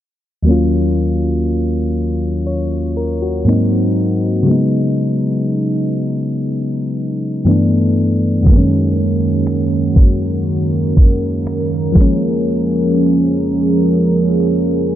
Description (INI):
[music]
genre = contemporary R&B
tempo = 60 BPM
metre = 4/4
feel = straight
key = Eb minor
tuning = A4 = 440 Hz
[part]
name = soft electric-piano-like synth keys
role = accompaniment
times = 0.4-15.0 s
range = Eb2 to Db5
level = -15 LUFS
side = left 1 dB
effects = chorus
[part]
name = chorused pulse-width pad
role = sustained chords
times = 8.5-15.0 s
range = Eb3 to Bb4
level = -17 LUFS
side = right 2 dB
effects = sidechain pumping
[part]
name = smooth R&B drum kit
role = drums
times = 8.5-12.2 s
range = finger snaps, kick drum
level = -9 LUFS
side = equal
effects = none
[sound]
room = light reverb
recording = low-pass filter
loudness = -13 LUFS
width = side -12 dB against mid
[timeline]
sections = 0.5-15.0 A section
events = none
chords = 0.5 Ebm7; 3.5 Ab7; 4.5 Db7sus4; 7.5 G6; 8.5 Gb6; 12.0 Bbm7